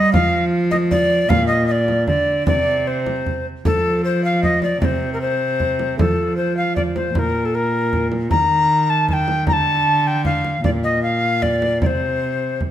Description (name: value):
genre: classical, renaissance-style consort dance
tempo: 154 BPM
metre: 3/4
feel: straight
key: unclear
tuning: A4 = 439 Hz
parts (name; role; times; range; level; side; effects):
- tenor recorder; melody; 0.0-12.6 s; A4 to Bb5; -19 LUFS; left 1 dB; none
- rich cello; bass; 0.0-12.7 s; Bb2 to G3; -21 LUFS; right 1 dB; none
- frame drum; percussion; 0.1-12.7 s; none; -22 LUFS; right 1 dB; none
room: wet stone room reverb, RT60 1.3 s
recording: none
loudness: -16 LUFS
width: side -11 dB against mid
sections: 0.0-3.7 A section; 3.7-12.7 B section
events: none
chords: 0.1 Dm/F; 1.3 Bb; 2.5 Csus2; 3.7 F; 4.8 N.C.; 6.0 F; 7.1 N.C.; 8.3 Eb; 9.5 Dm; 10.6 Bb; 11.8 N.C.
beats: | 0.13 0.52 0.91 | 1.29 1.68 2.07 | 2.47 2.86 3.26 | 3.65 4.04 4.43 | 4.82 5.21 5.60 | 5.99 6.38 6.76 | 7.15 7.54 7.92 | 8.31 8.70 9.09 | 9.47 9.86 10.25 | 10.64 11.03 11.42 | 11.82 12.21 12.61